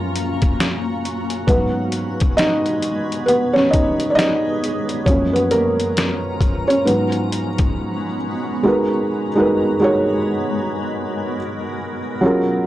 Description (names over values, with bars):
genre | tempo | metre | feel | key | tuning
lo-fi hip hop | 67 BPM | 4/4 | swing 60% on 16ths | G# dorian | A4 = 440 Hz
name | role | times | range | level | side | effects
felt-muted upright piano | accompaniment | 0.0-12.7 s | F#2 to D#5 | -18 LUFS | right 1 dB | none
granular cloud pad | sustained chords | 0.0-12.7 s | E#3 to A#5 | -25 LUFS | left 1 dB | built-in reverb
trip hop sampler-style drum kit | drums | 0.2-7.7 s | hi-hat, kick drum, snare drum | -20 LUFS | left 1 dB | none
room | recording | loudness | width
light reverb | dry, gritty hardware recording | -16 LUFS | side -14 dB against mid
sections
0.0-8.6 A section; 8.6-12.7 B section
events
felt piano solo 0.0-8.6; break 7.8-8.6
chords
0.0 F#maj7; 1.5 G#m9; 5.1 F#maj7; 6.9 G#m11; 8.6 G#m9